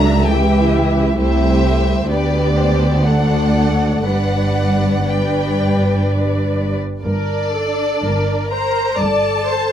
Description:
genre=classical, slow romantic movement for string orchestra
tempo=59-68 BPM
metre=3/4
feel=rubato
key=G major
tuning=A4 = 442 Hz
part: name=warm studio violin section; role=melody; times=0.0-9.7 s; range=D5 to A#5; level=-23 LUFS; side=left 2 dB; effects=none
part: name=warm studio violin section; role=second line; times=0.0-9.7 s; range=D4 to E5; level=-22 LUFS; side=left 2 dB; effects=none
part: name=dark studio viola section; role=accompaniment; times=0.0-9.7 s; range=E3 to D5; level=-20 LUFS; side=equal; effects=none
part: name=dark studio double bass section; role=bass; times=0.0-9.7 s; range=G1 to D2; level=-20 LUFS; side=right 1 dB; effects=none
part: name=warm studio cello section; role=bass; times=0.0-9.7 s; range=C2 to G2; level=-20 LUFS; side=right 2 dB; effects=none
room=light reverb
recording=none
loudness=-14 LUFS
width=side -10 dB against mid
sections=0.0-7.0 A section; 7.0-9.7 B section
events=none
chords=0.0 C#dim7; 1.2 Am7/C; 2.1 G/D; 3.1 D; 4.1 G; 7.0 G5

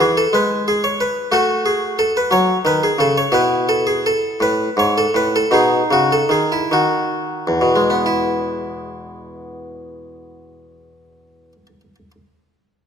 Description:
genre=classical, baroque-style suite movement for harpsichord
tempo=44-62 BPM (dotted quarters)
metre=12/8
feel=rubato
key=E major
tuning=A4 = 440 Hz
part: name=harpsichord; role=solo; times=0.0-12.1 s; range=E2 to C#5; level=-15 LUFS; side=equal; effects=none
room=light reverb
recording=close, detailed microphones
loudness=-15 LUFS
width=side -7 dB against mid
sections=0.0-8.1 A section; 8.1-12.9 B section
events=slowing down 0.7-8.1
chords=0.0 E; 1.3 F#m/A; 3.3 B7sus4; 5.5 B; 8.1 E

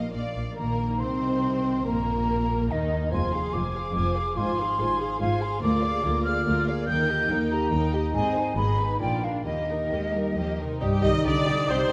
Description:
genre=classical, dramatic, fast romantic movement for symphony orchestra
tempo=130-146 BPM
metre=3/4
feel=rubato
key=Eb major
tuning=A4 = 440 Hz
part: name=rich symphonic violin section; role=melody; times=0.0-11.8 s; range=Eb4 to Ab5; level=-43 LUFS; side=equal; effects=none
part: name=warm symphonic violin section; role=second line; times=0.0-11.9 s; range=D4 to Eb5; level=-38 LUFS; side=equal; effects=none
part: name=concert harp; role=arpeggios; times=0.0-11.9 s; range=F2 to Bb5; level=-36 LUFS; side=equal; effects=none
part: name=rich symphonic cello section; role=bass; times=0.0-11.9 s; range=D2 to Bb3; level=-33 LUFS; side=equal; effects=none
part: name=clear studio viola section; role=accompaniment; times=0.1-11.9 s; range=Eb3 to Eb5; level=-35 LUFS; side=equal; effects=none
part: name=rich symphonic double bass section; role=bass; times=0.1-11.8 s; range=F1 to Eb2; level=-33 LUFS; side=equal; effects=none
part: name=hollow concert flute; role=second line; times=0.6-11.9 s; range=Eb5 to G6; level=-31 LUFS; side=equal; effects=none
part: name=dark French horn section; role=sustained chords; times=0.6-11.9 s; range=Eb3 to G4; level=-34 LUFS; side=equal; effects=none
part: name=mellow bassoon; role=accompaniment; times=10.8-11.9 s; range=G3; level=-34 LUFS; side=equal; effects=none
room=wet scoring stage reverb, RT60 2.1 s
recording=none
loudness=-26 LUFS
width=mono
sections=0.6-10.8 A section; 10.8-11.9 B section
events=none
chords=0.1 Bb; 0.6 Eb/Bb; 3.1 Fm; 4.4 Fm/Ab; 5.6 Bb7/D; 6.9 Eb; 8.1 Ab; 8.6 Abm; 9.0 Bb; 9.5 Eb; 10.8 Cm

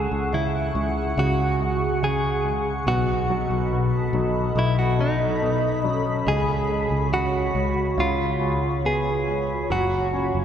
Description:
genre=pop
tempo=70 BPM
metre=4/4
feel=straight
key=unclear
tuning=A4 = 440 Hz
part: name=direct-recorded clean electric guitar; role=melody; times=0.0-10.4 s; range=D#4 to G#4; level=-25 LUFS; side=right 1 dB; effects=tremolo
part: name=clear concert grand piano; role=accompaniment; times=0.0-10.4 s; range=B2 to C#4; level=-27 LUFS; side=left 2 dB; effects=none
part: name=shimmering ambient pad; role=sustained chords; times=0.0-10.4 s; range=E#4 to C#6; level=-28 LUFS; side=equal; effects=chorus, built-in reverb, phaser
part: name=fretless electric bass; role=bass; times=0.0-10.4 s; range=F#1 to C#2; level=-27 LUFS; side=right 1 dB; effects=none
room=wet cathedral reverb, RT60 4.0 s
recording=recorded in a church or concert hall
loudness=-20 LUFS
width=side -9 dB against mid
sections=0.0-10.4 A section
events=none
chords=0.0 C#sus4; 2.9 B7; 6.3 C#7sus4; 8.0 C#7; 9.7 F#sus2

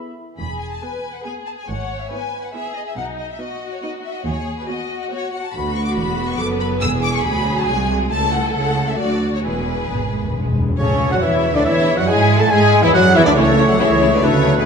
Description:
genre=quick classical-period movement for symphony orchestra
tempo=139 BPM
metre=3/4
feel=straight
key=E major, A major from 5.5 s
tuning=A4 = 440 Hz
part: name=flute section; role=second line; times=0.0-0.1, 10.8-14.7 s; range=G#4 to B5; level=-23 LUFS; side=left 4 dB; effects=none
part: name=warm oboe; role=second line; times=0.0-0.1, 10.8-14.7 s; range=B4 to A5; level=-24 LUFS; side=right 2 dB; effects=none
part: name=warm bassoon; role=accompaniment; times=0.0-0.2, 10.8-14.7 s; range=C#3 to A3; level=-22 LUFS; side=equal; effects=none
part: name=mellow French horn section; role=sustained chords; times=0.0-0.1, 10.8-14.7 s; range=C#3 to E4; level=-22 LUFS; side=left 4 dB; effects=none
part: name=rich studio violin section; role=melody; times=0.4-14.7 s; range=B4 to E6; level=-26 LUFS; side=left 4 dB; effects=none
part: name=dark studio violin section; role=second line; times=0.4-14.5 s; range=B3 to C#5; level=-24 LUFS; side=left 2 dB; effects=none
part: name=rich studio double bass section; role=bass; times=0.4-14.6 s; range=E1 to A2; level=-23 LUFS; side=right 3 dB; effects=none
part: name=warm studio cello section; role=bass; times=0.4-14.7 s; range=C2 to A3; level=-24 LUFS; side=right 4 dB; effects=none
part: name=rich studio viola section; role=accompaniment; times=0.8-14.5 s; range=E3 to A4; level=-25 LUFS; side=right 1 dB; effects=none
part: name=timpani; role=percussion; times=6.8-7.4, 9.4-11.4 s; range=E2 to A2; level=-24 LUFS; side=left 1 dB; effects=none
part: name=clear trumpet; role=stabs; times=10.8-14.7 s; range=B4 to A5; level=-21 LUFS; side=right 2 dB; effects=none
part: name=warm clarinet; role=second line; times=11.2-14.7 s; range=E4 to C#5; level=-24 LUFS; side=left 3 dB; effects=none
room=wet recital hall reverb, RT60 1.6 s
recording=dark, warm production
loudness=-15 LUFS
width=side -6 dB against mid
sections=0.4-10.8 A section; 10.8-14.7 B section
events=timpani fill 9.4-10.8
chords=0.4 E; 1.7 E/G#; 3.0 B; 4.3 B/D#; 5.5 Bm; 6.8 E; 8.1 A/C#; 9.0 D; 9.4 E; 10.8 Bm11/C# (rootless); 12.1 E7/G#; 13.4 A/C#

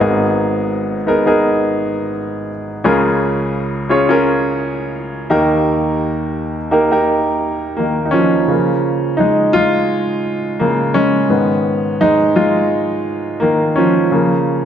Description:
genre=pop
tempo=85 BPM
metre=4/4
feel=swing 56% on 16ths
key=Db mixolydian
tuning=A4 = 440 Hz
part: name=clear baby grand piano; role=solo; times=0.0-14.7 s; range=Ab1 to Db5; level=-13 LUFS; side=equal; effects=none
room=wet scoring stage reverb, RT60 1.5 s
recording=none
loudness=-13 LUFS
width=side -9 dB against mid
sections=0.0-8.5 A section; 8.5-14.7 B section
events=grand piano solo 8.5-14.7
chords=0.0 Abmadd9; 2.8 Db6; 5.3 Eb; 8.5 Db6; 11.3 Abm; 14.1 Db6

